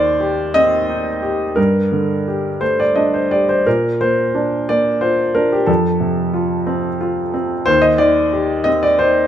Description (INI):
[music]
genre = neoclassical minimalist piano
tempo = 59 BPM (dotted quarters)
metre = 6/8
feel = rubato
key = unclear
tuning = A4 = 441 Hz
[part]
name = warm grand piano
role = solo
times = 0.0-9.3 s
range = Eb2 to Eb5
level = -14 LUFS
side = equal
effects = none
[sound]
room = light reverb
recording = minimal, uncompressed stereo recording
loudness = -14 LUFS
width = side -10 dB against mid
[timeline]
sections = 0.0-9.3 A section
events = none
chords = 0.0 Cm/Eb; 1.6 Gmadd9; 3.7 Bb; 5.7 F; 7.7 Cm/Eb